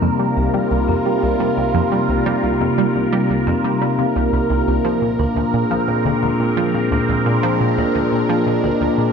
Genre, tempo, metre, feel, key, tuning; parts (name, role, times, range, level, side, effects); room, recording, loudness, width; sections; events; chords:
ambient; 87 BPM; 4/4; straight; A4 = 440 Hz
phased analog pad; sustained chords; 0.0-9.1 s; Bb2 to Bb4; -20 LUFS; right 2 dB; phaser, chorus
vibraphone with soft mallets; arpeggios; 0.0-9.1 s; Bb3 to Bb4; -20 LUFS; left 3 dB; auto-pan, tape echo
tight sequenced synth; riff; 0.0-9.1 s; C2 to G3; -21 LUFS; right 1 dB; chorus, phaser, tape echo
wet lush hall reverb, RT60 2.8 s; -15 LUFS; side -6 dB against mid
0.0-9.1 A section
0.0 Cm7; 4.8 Bb7